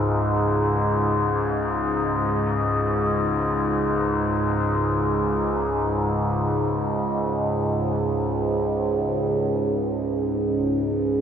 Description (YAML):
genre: ambient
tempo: free time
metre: none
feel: none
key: unclear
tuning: A4 = 440 Hz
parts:
  - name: overtone-sweeping drone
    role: solo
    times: 0.0-11.2 s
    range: C#2 to G#2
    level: -21 LUFS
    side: equal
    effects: chorus, built-in reverb, tape echo
room: wet huge ambient reverb, RT60 8.4 s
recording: dark, warm production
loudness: -21 LUFS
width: side -8 dB against mid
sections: 0.0-9.0 A section; 9.0-11.2 B section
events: none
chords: 0.0 C#5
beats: free time